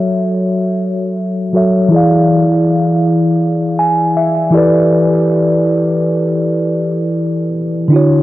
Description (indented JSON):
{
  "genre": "hip hop",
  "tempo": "80 BPM",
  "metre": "4/4",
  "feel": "swing 58% on 16ths",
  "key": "unclear",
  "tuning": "A4 = 441 Hz",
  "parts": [
    { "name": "mellow tine electric piano", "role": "solo", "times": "0.0-8.2 s", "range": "D3 to G#5", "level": "-11 LUFS", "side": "equal", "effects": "slow stereo tremolo, cassette tape, low-pass filter, tape echo" }
  ],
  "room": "moderate plate reverb, RT60 3.1 s",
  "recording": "echo-heavy mix, cassette tape",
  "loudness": "-11 LUFS",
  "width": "side -16 dB against mid",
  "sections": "0.0-8.2 A section",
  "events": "filter sweep on tine electric piano 0.0-8.2; tine electric piano fill 3.4-4.9",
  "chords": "0.0 F#m7; 1.9 E7b9; 4.5 A9sus4/E"
}